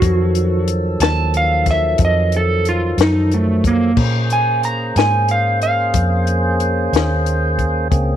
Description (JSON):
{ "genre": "slow blues", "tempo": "61 BPM (dotted quarters)", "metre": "12/8", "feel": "straight", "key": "Bb minor", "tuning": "A4 = 440 Hz", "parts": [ { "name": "electric slide guitar", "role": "melody", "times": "0.0-6.3 s", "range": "A3 to Bb5", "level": "-17 LUFS", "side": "right 2 dB", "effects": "none" }, { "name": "tonewheel organ", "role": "sustained chords", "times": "0.0-8.2 s", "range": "Eb3 to C5", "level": "-22 LUFS", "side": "right 1 dB", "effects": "slow rotary speaker, overdrive" }, { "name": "vintage muted fingered electric bass", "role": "bass", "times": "0.0-8.2 s", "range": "Db2 to Bb2", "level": "-18 LUFS", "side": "equal", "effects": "none" }, { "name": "compact cocktail drum kit", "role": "drums", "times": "0.0-8.1 s", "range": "crash cymbal, hi-hat, kick drum, snare drum", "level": "-20 LUFS", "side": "left 4 dB", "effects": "none" } ], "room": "light reverb, small room ambience", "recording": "1960s-style stereo", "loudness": "-14 LUFS", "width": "side -10 dB against mid", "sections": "0.0-4.0 A section; 4.0-8.2 B section", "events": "electric slide guitar solo 0.0-4.0", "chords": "0.0 F7b9; 4.0 Bbm9", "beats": "| 0.02 1.01 1.99 2.98 | 3.96 4.95 5.94 6.93 | 7.92" }